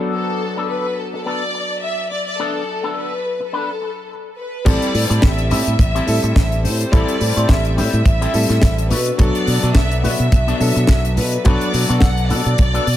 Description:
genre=nu-disco, nu disco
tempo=106 BPM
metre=4/4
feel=swing 56% on 16ths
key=A dorian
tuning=A4 = 440 Hz
part: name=warm electric grand piano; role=accompaniment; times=0.0-12.8 s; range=F#3 to A4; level=-24 LUFS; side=left 1 dB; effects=dub echo
part: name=electric guitar with an envelope filter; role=riff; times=0.0-12.9 s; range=B3 to C5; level=-26 LUFS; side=left 3 dB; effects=lush chorus, low-pass filter, dub echo
part: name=warm studio violin section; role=melody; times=0.1-13.0 s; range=A4 to F#5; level=-23 LUFS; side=equal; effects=dub echo
part: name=fingered electric bass with an envelope filter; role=bass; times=4.7-13.0 s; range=A1 to B2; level=-18 LUFS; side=equal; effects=none
part: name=kick drum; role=drums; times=4.7-12.7 s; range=none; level=-14 LUFS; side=equal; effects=studio reverb
part: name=tight funk drum kit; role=drums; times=4.7-13.0 s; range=crash cymbal, hi-hat, snare drum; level=-24 LUFS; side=left 2 dB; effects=studio reverb, dub echo
room=studio reverb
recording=echo-heavy mix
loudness=-15 LUFS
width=side -13 dB against mid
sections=0.0-4.7 A section; 4.7-13.0 B section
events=filter sweep on electric grand piano 0.0-4.7; break 4.1-4.7; drop 4.7-13.0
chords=0.0 Bm7; 4.7 Am7; 8.9 Bm7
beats=| 0.13 0.70 1.26 1.83 | 2.40 2.96 3.53 4.09 | 4.66 5.23 5.79 6.36 | 6.92 7.49 8.06 8.62 | 9.19 9.75 10.32 10.89 | 11.45 12.02 12.58

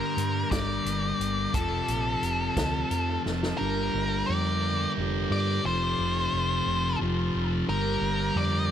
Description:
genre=psychedelic rock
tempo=59 BPM (dotted quarters)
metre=6/8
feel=straight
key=G minor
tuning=A4 = 439 Hz
part: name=octave-fuzz lead guitar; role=melody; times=0.0-8.7 s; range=A4 to D5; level=-30 LUFS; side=left 1 dB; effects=distortion, analog delay
part: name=combo organ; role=sustained chords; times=0.0-8.7 s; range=F3 to Bb4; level=-38 LUFS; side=right 8 dB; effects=spring reverb
part: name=thick fuzz guitar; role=riff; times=0.0-8.7 s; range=F2 to G3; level=-29 LUFS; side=left 1 dB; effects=distortion, phaser
part: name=hollow-body short-scale fingered electric bass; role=bass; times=0.2-8.7 s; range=F1 to G2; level=-31 LUFS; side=equal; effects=none
part: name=vintage drum kit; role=drums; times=0.2-3.6 s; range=hi-hat, kick drum, snare drum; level=-32 LUFS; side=equal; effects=analog delay
room=small room ambience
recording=echo-heavy mix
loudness=-25 LUFS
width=side -9 dB against mid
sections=0.0-3.6 A section; 3.6-8.7 B section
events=drum fill 3.3-3.6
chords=0.0 Gm; 1.5 F; 3.6 Gm; 5.6 F; 7.7 Gm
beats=0.52 | 1.55 2.57 | 3.60 4.62 | 5.64 6.66 | 7.68 8.70

